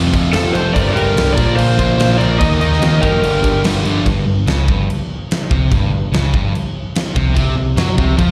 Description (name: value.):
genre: hard rock.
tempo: 145 BPM.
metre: 4/4.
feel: straight.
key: G minor.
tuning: A4 = 440 Hz.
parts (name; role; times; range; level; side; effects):
overdriven semi-hollow guitar; riff; 0.0-4.0, 7.3-8.3 s; F2 to Eb4; -23 LUFS; equal; slapback echo.
sludgy distorted guitar; riff; 0.0-8.3 s; F2 to Eb4; -22 LUFS; equal; overdrive, slapback echo.
overdriven picked electric bass; bass; 0.0-8.3 s; F1 to F#2; -20 LUFS; equal; none.
huge arena drum kit; drums; 0.1-8.3 s; crash cymbal, kick drum, snare drum; -20 LUFS; equal; none.
lead guitar through a small cranked amp; melody; 0.3-3.6 s; A4 to Eb5; -21 LUFS; equal; overdrive, slapback echo.
octave-fuzz lead guitar; second line; 0.4-3.6 s; F4 to Bb4; -27 LUFS; equal; distortion, slapback echo.
room: small room reverb.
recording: live gig heard through the venue's PA, recital hall reverb.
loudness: -15 LUFS.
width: mono.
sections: 0.0-4.1 A section; 4.1-8.3 B section.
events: none.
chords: 0.0 F5; 0.8 Gm; 1.4 Bb5; 2.4 Eb5; 3.2 Gm; 4.1 Gsus4; 7.4 Csus4.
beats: 0.34 | 0.75 1.17 1.58 1.99 | 2.41 2.82 3.23 3.65 | 4.06 4.47 4.88 5.30 | 5.71 6.12 6.53 6.95 | 7.36 7.77 8.18.